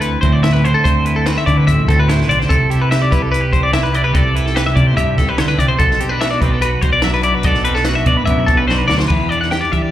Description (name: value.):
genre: math rock and midwest emo.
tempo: 145 BPM.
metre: 4/4.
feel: straight.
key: C lydian.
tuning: A4 = 439 Hz.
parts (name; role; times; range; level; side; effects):
twelve-string electric guitar; accompaniment; 0.0-9.9 s; A2 to C5; -18 LUFS; right 3 dB; none.
twelve-string electric guitar; arpeggios; 0.0-9.9 s; G4 to G5; -18 LUFS; left 3 dB; slapback echo.
growling fingered electric bass; bass; 0.0-9.9 s; A1 to E3; -17 LUFS; equal; overdrive.
compact cocktail drum kit; drums; 0.0-9.8 s; crash cymbal, hi-hat, kick drum, snare drum; -20 LUFS; equal; none.
room: small room ambience.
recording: live gig heard through the venue's PA, club reverb.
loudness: -12 LUFS.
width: side -12 dB against mid.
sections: 0.0-9.1 A section.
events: drum fill 8.7-9.1.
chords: 0.0 Dsus2; 2.5 C69; 5.8 Bm7; 9.1 Em7.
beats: 0.02 0.43 | 0.85 1.26 1.67 2.08 | 2.50 2.91 3.32 3.73 | 4.15 4.56 4.97 5.38 | 5.80 6.21 6.62 7.04 | 7.45 7.86 8.27 8.69 | 9.10 9.52.